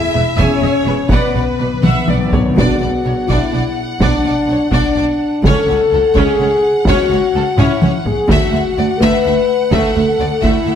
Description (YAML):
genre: cinematic, epic orchestral film score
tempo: 84 BPM (dotted quarters)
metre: 6/8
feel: straight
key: B dorian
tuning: A4 = 443 Hz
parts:
  - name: rich chamber violin section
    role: second line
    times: 0.0-10.7 s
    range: A4 to E5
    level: -23 LUFS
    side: left 2 dB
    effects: none
  - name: dark French horn section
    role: sustained chords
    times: 0.0-10.8 s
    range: B3 to B4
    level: -16 LUFS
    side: left 4 dB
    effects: none
  - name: clear studio violin section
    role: melody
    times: 0.1-10.8 s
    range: D5 to G#5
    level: -26 LUFS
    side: left 2 dB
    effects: none
  - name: rich studio viola section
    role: accompaniment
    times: 0.1-10.8 s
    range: A3 to E5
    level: -23 LUFS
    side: right 1 dB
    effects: none
  - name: clear symphonic double bass section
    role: bass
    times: 0.1-10.7 s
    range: E1 to D2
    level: -21 LUFS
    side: right 3 dB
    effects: none
  - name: warm symphonic cello section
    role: bass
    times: 0.1-10.8 s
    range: C#2 to B2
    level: -21 LUFS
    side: right 2 dB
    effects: none
  - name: taiko ensemble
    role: drums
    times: 0.4-10.8 s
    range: none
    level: -18 LUFS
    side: equal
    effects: none
  - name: timpani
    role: percussion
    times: 1.1-3.3 s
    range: B2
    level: -21 LUFS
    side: left 1 dB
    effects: none
room: wet recital hall reverb, RT60 1.4 s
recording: none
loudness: -12 LUFS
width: side -8 dB against mid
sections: 0.0-2.6 A section; 2.6-10.8 B section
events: timpani fill 1.1-2.6; drum fill 1.8-2.6, 7.6-8.3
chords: 0.0 E; 1.1 Bm; 5.5 F#m/C#; 8.3 Dadd9